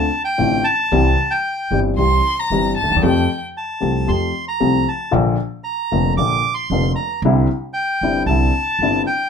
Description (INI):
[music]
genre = tango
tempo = 114 BPM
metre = 4/4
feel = rubato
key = unclear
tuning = A4 = 439 Hz
[part]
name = bandoneon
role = melody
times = 0.0-9.3 s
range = G5 to D6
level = -20 LUFS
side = right 1 dB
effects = none
[part]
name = warm baby grand piano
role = accompaniment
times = 0.0-9.0 s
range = F1 to G4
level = -19 LUFS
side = left 4 dB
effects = none
[part]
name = upright bass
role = bass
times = 0.0-9.0 s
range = F1 to F2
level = -20 LUFS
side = right 3 dB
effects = none
[part]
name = rich violin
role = second line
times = 2.0-3.4 s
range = G5 to C6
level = -19 LUFS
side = equal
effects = none
[sound]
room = moderate club reverb, RT60 0.5 s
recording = minimal, uncompressed stereo recording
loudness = -16 LUFS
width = side -6 dB against mid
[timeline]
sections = 0.0-9.3 A section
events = none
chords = 0.0 Dm7; 0.9 C; 3.0 Fadd9; 5.1 Bb; 7.2 Cadd9